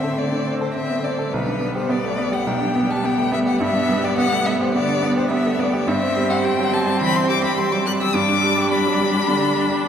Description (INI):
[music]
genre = quick classical-period movement for piano quartet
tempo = 106 BPM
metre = 4/4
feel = straight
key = G major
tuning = A4 = 440 Hz
[part]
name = warm violin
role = melody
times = 0.0-9.9 s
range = B4 to F#6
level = -22 LUFS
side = left 5 dB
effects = none
[part]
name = dark cello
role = second line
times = 0.0-9.9 s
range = D3 to G3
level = -27 LUFS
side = right 2 dB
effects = none
[part]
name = clear baby grand piano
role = accompaniment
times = 0.0-9.9 s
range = B1 to A4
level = -22 LUFS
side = right 1 dB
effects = none
[part]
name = warm viola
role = accompaniment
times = 0.0-9.9 s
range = B3 to D4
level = -24 LUFS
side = right 1 dB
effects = none
[sound]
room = wet cathedral reverb, RT60 5.0 s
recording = recorded in a church or concert hall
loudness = -17 LUFS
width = side -8 dB against mid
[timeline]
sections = 0.0-9.9 A section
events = none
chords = 0.0 D5/A; 1.3 G/B; 3.6 G; 5.9 C/G; 8.1 G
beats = 0.17 0.75 | 1.33 1.90 2.47 3.04 | 3.61 4.18 4.75 5.31 | 5.88 6.44 7.01 7.57 | 8.14 8.71 9.28 9.84